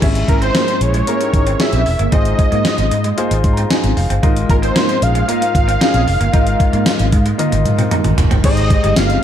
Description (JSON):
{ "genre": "1980s-style pop", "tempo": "114 BPM", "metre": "4/4", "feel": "straight", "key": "unclear", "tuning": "A4 = 440 Hz", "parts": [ { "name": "warm concert grand piano", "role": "accompaniment", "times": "0.0-9.2 s", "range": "Ab2 to C6", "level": "-21 LUFS", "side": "left 4 dB", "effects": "none" }, { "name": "electric guitar through a small old amp", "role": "riff", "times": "0.0-9.1 s", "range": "G3 to Eb4", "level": "-24 LUFS", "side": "right 7 dB", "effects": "wide subtle chorus" }, { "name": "vintage muted fingered electric bass", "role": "bass", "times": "0.0-9.2 s", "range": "Fb1 to Ab2", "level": "-17 LUFS", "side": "equal", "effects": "none" }, { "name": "gated 80s digital drum machine", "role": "drums", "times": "0.0-9.2 s", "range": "crash cymbal, hi-hat, kick drum, snare drum, tambourine, toms", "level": "-16 LUFS", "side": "equal", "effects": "gated reverb, gated reverb snare, overdrive" }, { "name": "wide unison lead", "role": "melody", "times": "0.3-9.2 s", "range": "Bb4 to F5", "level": "-19 LUFS", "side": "right 1 dB", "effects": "none" }, { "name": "mellow synth brass", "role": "stabs", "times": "0.3-6.0 s", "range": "Db4 to C5", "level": "-25 LUFS", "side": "left 1 dB", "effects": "chorus" } ], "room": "light reverb, digital ambience", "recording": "dark, warm production", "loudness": "-12 LUFS", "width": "side -10 dB against mid", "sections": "0.0-8.4 A section", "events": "grand piano fill 3.2-4.2; drum fill 7.4-8.4", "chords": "0.0 Dbm/Ab; 2.1 Fm7/Ab; 4.2 Ebsus2; 8.4 Abmaj7", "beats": "| 0.02 0.55 1.07 1.60 | 2.13 2.65 3.18 3.71 | 4.23 4.76 5.29 5.81 | 6.34 6.86 7.39 7.92 | 8.44 8.97" }